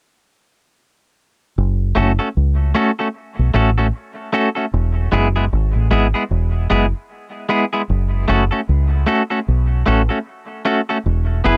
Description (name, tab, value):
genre	dub reggae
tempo	76 BPM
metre	4/4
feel	swing 59% on 16ths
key	F# minor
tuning	A4 = 440 Hz
part	deep dub fingered electric bass	bass	1.6-11.6 s	E1 to C#2	-18 LUFS	equal	none
part	clean electric guitar	accompaniment	2.0-11.6 s	G#3 to B4	-21 LUFS	equal	tremolo, dub echo
room	little or no reverb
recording	dry, close 1970s-style studio recording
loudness	-18 LUFS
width	mono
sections	1.6-11.6 A section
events	none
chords	1.6 F#m; 4.7 E; 7.9 F#m; 11.0 E